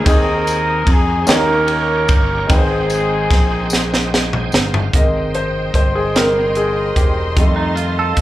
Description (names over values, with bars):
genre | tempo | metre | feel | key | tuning
slow gospel | 49 BPM (dotted quarters) | 6/8 | straight | Ab major | A4 = 440 Hz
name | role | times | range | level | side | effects
clear horn section | melody | 0.0-4.1 s | C4 to Bb4 | -19 LUFS | equal | plate reverb, slapback echo
clear baby grand piano | accompaniment | 0.0-8.2 s | Ab2 to G5 | -20 LUFS | left 1 dB | plate reverb, slapback echo
bright tonewheel organ | sustained chords | 0.0-8.2 s | Ab3 to Ab5 | -27 LUFS | right 3 dB | slow rotary speaker, overdrive, chorus vibrato, plate reverb
fingered electric bass | bass | 0.0-8.2 s | Fb1 to F2 | -21 LUFS | equal | none
crisp fusion drum kit | drums | 0.1-8.2 s | hi-hat, kick drum, ride cymbal, snare drum, toms | -16 LUFS | equal | none
tambourine | percussion | 0.1-4.9 s | none | -28 LUFS | left 2 dB | none
warm symphonic string section | sustained chords | 4.9-8.2 s | Eb5 to C6 | -26 LUFS | left 1 dB | plate reverb
clean electric guitar | second line | 7.6-8.2 s | Eb4 to A4 | -20 LUFS | right 6 dB | warbly pitch drift, plate reverb
room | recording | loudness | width
light reverb | live gig heard through the venue's PA, club ambience | -13 LUFS | side -15 dB against mid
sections
0.0-4.9 A section; 4.9-8.2 B section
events
drum fill 3.7-4.9; tonewheel organ fill 3.7-4.9; grand piano solo 4.9-8.2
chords
0.1 Ab/Eb; 1.3 Eb7; 2.5 Abmaj7; 7.4 F7